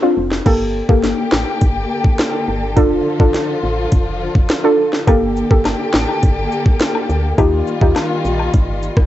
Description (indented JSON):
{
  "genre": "dancehall",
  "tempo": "104 BPM",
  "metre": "4/4",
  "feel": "straight",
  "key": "unclear",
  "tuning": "A4 = 445 Hz",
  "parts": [
    { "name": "soft round pluck", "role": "accompaniment", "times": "0.0-8.0 s", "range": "Bb3 to A4", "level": "-16 LUFS", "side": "equal", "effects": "chorus, sidechain pumping, cassette tape" },
    { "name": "woody FM bass", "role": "bass", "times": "0.2-9.1 s", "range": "F1 to Eb2", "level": "-21 LUFS", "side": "equal", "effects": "none" },
    { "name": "island pop drum kit", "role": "drums", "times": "0.3-9.1 s", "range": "crash cymbal, hi-hat, kick drum, rim click, snare drum", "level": "-15 LUFS", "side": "equal", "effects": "cassette tape" },
    { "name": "warm symphonic string section", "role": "sustained chords", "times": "0.5-9.1 s", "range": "D3 to A4", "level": "-21 LUFS", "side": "left 2 dB", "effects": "sidechain pumping, cassette tape" },
    { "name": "woodblock and cabasa", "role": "percussion", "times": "5.1-9.0 s", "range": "none", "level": "-26 LUFS", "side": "left 6 dB", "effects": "none" }
  ],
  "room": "light reverb",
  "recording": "home recording on cassette, nothing above 7.9 kHz",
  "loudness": "-13 LUFS",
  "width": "side -13 dB against mid",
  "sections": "0.5-9.1 A section",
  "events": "none",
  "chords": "0.5 Gmadd9; 2.8 Dm/F; 5.1 Gmadd9; 7.4 Ebadd9",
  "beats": "| 0.46 1.04 1.61 2.19 | 2.77 3.34 3.92 4.50 | 5.08 5.65 6.23 6.81 | 7.38 7.96 8.54"
}